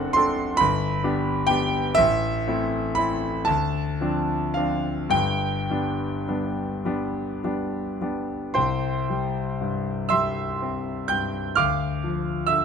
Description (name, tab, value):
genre	classical, romantic nocturne for solo piano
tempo	34-45 BPM (dotted quarters)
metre	6/8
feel	rubato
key	C major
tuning	A4 = 440 Hz
part	clear concert grand piano	solo	0.0-12.6 s	F#1 to G6	-22 LUFS	equal	none
room	light reverb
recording	close, detailed microphones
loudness	-22 LUFS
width	side -6 dB against mid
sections	0.0-8.6 A section; 8.6-12.6 B section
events	none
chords	0.0 D7/F#; 0.6 G; 2.0 Am; 3.5 Dm7; 5.1 G; 8.6 C; 11.6 Bdim/D (rootless)